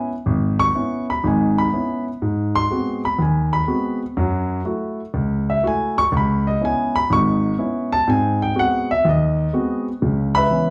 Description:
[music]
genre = solo jazz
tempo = 123 BPM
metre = 4/4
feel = swing 67% on 8ths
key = C# minor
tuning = A4 = 440 Hz
[part]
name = warm grand piano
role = solo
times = 0.0-10.7 s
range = G#1 to C#6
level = -20 LUFS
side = equal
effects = none
[sound]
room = wet club reverb, RT60 0.7 s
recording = heard from further back in the room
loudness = -20 LUFS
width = mono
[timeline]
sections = 0.0-10.0 A section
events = grand piano solo 0.0-10.0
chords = 0.0 C#m7; 2.2 G#7#9; 4.2 F#m7; 6.1 C#m7; 8.1 G#7#9; 10.0 C#m7

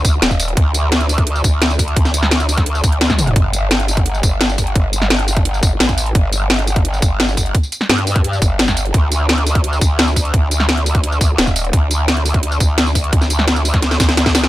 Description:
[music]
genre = dark technical drum and bass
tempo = 172 BPM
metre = 4/4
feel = straight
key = unclear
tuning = A4 = 440 Hz
[part]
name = growl bass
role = bass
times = 0.0-14.5 s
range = Eb1 to G2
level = -17 LUFS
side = equal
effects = chorus, tube saturation, sidechain pumping
[part]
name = drum and bass drum kit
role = drums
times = 0.0-14.5 s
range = hi-hat, snare drum, tambourine, toms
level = -17 LUFS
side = equal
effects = overdrive, small room ambience
[part]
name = electronic kick drum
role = drums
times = 0.0-14.3 s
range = none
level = -15 LUFS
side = equal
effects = overdrive, small room ambience
[sound]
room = little or no reverb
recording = none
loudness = -13 LUFS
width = side -15 dB against mid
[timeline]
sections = 0.0-14.5 A section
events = drum fill 3.1, 13.8-14.5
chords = none

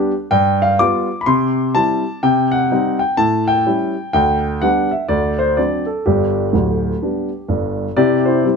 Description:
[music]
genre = jazz, stride piano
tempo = 126 BPM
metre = 4/4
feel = swing 62% on 8ths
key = G major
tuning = A4 = 440 Hz
[part]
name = warm baby grand piano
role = solo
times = 0.0-8.6 s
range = D1 to D6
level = -14 LUFS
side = left 1 dB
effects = none
[sound]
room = moderate studio reverb, RT60 0.7 s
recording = dark, warm production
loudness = -14 LUFS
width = side -5 dB against mid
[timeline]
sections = 0.0-8.0 A section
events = none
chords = 0.3 G7; 1.3 C; 2.2 Cm; 3.2 A7; 4.1 G/D; 5.1 D7; 6.1 G; 8.0 C

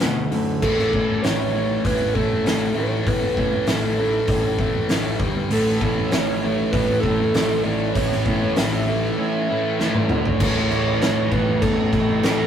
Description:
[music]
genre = quiet-loud alternative rock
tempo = 98 BPM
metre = 4/4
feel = straight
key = unclear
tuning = A4 = 440 Hz
[part]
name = electric guitar through a small old amp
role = arpeggios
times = 0.0-10.4 s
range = A2 to A4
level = -30 LUFS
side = right 4 dB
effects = none
[part]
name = sludgy distorted guitar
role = riff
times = 0.0-12.5 s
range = G2 to D4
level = -24 LUFS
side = left 4 dB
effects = overdrive
[part]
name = overdriven picked electric bass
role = bass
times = 0.0-12.5 s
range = G1 to B2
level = -28 LUFS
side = equal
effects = none
[part]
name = oversized low-tuned drum kit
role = drums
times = 0.0-12.4 s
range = crash cymbal, hi-hat, kick drum, snare drum, toms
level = -23 LUFS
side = equal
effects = none
[part]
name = pure sine lead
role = melody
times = 0.6-12.5 s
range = A4 to E5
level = -24 LUFS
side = right 2 dB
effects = chorus
[part]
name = thick fuzz guitar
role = riff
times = 5.5-12.5 s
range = A2 to D4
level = -27 LUFS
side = right 6 dB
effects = distortion
[sound]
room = moderate small room reverb, RT60 0.6 s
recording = rough rehearsal-room recording, warm saturation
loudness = -18 LUFS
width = side -9 dB against mid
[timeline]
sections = 0.6-10.4 A section; 10.4-12.5 B section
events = drum fill 9.8-10.4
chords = 0.0 D; 0.6 A; 5.2 G5; 5.5 A; 10.1 D5; 10.4 A

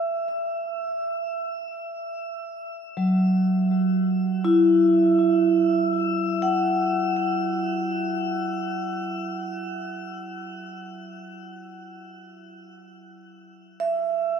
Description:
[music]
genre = ambient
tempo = free time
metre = none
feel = none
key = unclear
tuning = A4 = 444 Hz
[part]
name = vibraphone with medium mallets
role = solo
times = 0.0-14.4 s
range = F#3 to F#5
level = -22 LUFS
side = right 1 dB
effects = ping-pong delay
[sound]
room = wet shimmer reverb, RT60 8.1 s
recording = none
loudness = -21 LUFS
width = side -7 dB against mid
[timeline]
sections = 0.0-14.4 A section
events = none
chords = 0.0 Esus2

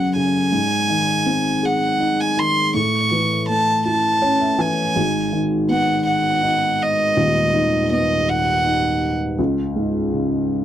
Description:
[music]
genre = pop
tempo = 54 BPM (dotted quarters)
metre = 6/8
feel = straight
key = unclear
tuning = A4 = 440 Hz
[part]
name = warm violin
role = melody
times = 0.0-9.1 s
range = D#5 to C#6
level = -19 LUFS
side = right 1 dB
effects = none
[part]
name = dark upright piano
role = accompaniment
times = 0.0-10.6 s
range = D#1 to G#5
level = -19 LUFS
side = equal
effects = none
[sound]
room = light reverb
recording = dry, close 1970s-style studio recording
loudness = -16 LUFS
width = side -11 dB against mid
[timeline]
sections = 0.0-5.0 A section; 5.0-10.6 B section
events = upright piano fill 3.9-5.0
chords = 0.0 F#m; 0.5 G#; 2.7 A; 5.0 G#m7; 9.4 C#5

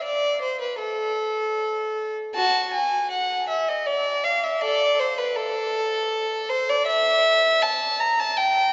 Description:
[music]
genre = classical, baroque-style suite movement for unaccompanied violin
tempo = 79 BPM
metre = 3/4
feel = rubato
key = A minor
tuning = A4 = 436 Hz
[part]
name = warm violin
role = solo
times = 0.0-8.7 s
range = F#4 to Bb5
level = -23 LUFS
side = equal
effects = none
[sound]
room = wet cathedral reverb, RT60 4.6 s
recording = recorded in a church or concert hall, nothing above 7.7 kHz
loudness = -23 LUFS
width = mono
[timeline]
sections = 0.0-8.7 A section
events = none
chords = none

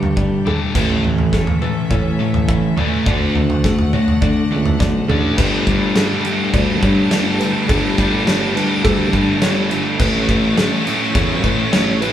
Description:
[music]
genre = post-rock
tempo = 104 BPM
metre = 4/4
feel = straight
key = G lydian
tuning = A4 = 440 Hz
[part]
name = clear studio string section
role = sustained chords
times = 0.0-12.1 s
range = C#4 to C#6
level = -30 LUFS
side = left 1 dB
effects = none
[part]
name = felt-muted upright piano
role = arpeggios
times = 0.0-12.1 s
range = A4 to E5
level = -28 LUFS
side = right 4 dB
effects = none
[part]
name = twangy electric guitar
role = arpeggios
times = 0.0-5.4 s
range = A2 to A4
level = -30 LUFS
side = left 3 dB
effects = spring reverb
[part]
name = sludgy distorted guitar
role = riff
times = 0.0-12.1 s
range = G2 to D4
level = -21 LUFS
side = left 3 dB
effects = overdrive
[part]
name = warm tuba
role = bass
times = 0.0-12.1 s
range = G1 to D3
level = -22 LUFS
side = left 1 dB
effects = none
[part]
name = loose indie drum kit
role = drums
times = 0.0-12.1 s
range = crash cymbal, kick drum, snare drum, toms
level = -19 LUFS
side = equal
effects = none
[part]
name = sludgy distorted guitar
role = riff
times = 0.7-12.1 s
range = A2 to G4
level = -20 LUFS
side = right 2 dB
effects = overdrive
[sound]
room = wet large studio reverb, RT60 0.9 s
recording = band playing live in one room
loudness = -14 LUFS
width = side -10 dB against mid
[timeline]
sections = 0.0-5.4 A section; 5.4-12.1 B section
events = build-up 0.0-5.4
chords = 0.0 Gsus2; 0.7 A; 3.1 D; 5.4 Gsus2; 10.0 A

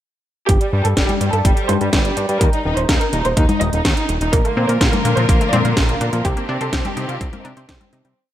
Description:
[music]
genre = italo disco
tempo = 125 BPM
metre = 4/4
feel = straight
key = unclear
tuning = A4 = 440 Hz
[part]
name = warm studio violin section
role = melody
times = 0.5-8.1 s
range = G3 to Eb5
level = -21 LUFS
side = right 1 dB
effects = digital delay
[part]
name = fat analog bass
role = bass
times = 0.5-8.1 s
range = Eb1 to C3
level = -20 LUFS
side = equal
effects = none
[part]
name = electronic kick drum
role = drums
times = 0.5-7.8 s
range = none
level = -18 LUFS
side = equal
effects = none
[part]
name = house drum kit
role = drums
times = 0.5-8.1 s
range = congas, hi-hat, snare drum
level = -21 LUFS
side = left 2 dB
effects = gated reverb
[part]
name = clear symphonic string section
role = sustained chords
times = 4.3-8.2 s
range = D3 to Bb4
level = -25 LUFS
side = left 1 dB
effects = none
[part]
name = analog pluck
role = arpeggios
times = 4.3-8.1 s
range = F3 to C5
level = -26 LUFS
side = left 3 dB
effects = chorus, digital delay
[sound]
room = digital ambience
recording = none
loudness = -15 LUFS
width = side -12 dB against mid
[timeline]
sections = 0.5-8.2 verse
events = fade-out 5.6-8.2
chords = 0.5 N.C.; 2.4 Eb5; 4.3 Bb; 6.2 Cmadd9

